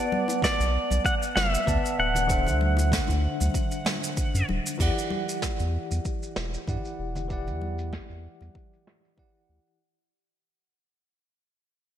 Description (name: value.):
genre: sunset chillout.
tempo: 96 BPM.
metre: 4/4.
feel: swing 55% on 16ths.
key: E minor.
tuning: A4 = 440 Hz.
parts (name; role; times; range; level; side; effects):
pedal steel guitar; melody; 0.0-4.5 s; D5 to F#5; -28 LUFS; equal; ping-pong delay, slapback echo.
bell-like tine electric piano; accompaniment; 0.0-9.8 s; D3 to A5; -31 LUFS; moving between left 4 dB and right 3 dB; fast stereo tremolo, auto-pan, vintage 12-bit sampler grit, ping-pong delay, slapback echo.
congas and bongos; percussion; 0.1-8.5 s; none; -36 LUFS; left 1 dB; slapback echo.
soft brush drum kit; drums; 0.3-9.8 s; crash cymbal, shaker, snare drum; -32 LUFS; right 2 dB; low-pass filter on cymbals, low-pass filter on snare, low-pass filter on perc, low-pass filter on room.
electronic kick drum; drums; 0.4-9.3 s; none; -30 LUFS; equal; none.
warm sub bass; bass; 0.6-9.6 s; D1 to G2; -26 LUFS; equal; none.
room: moderate lush hall reverb, RT60 1.7 s.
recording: big arena sound.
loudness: -24 LUFS.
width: side -10 dB against mid.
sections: 0.0-4.8 A section; 4.8-9.8 B section.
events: fade-out 4.8-9.8; filter sweep on drum 4.8-9.8.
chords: 0.0 Bm7; 2.3 D7; 4.8 Em9.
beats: 0.42 1.05 1.67 | 2.30 2.92 3.55 4.17 | 4.80 5.42 6.05 6.67 | 7.30 7.92 8.55 9.17.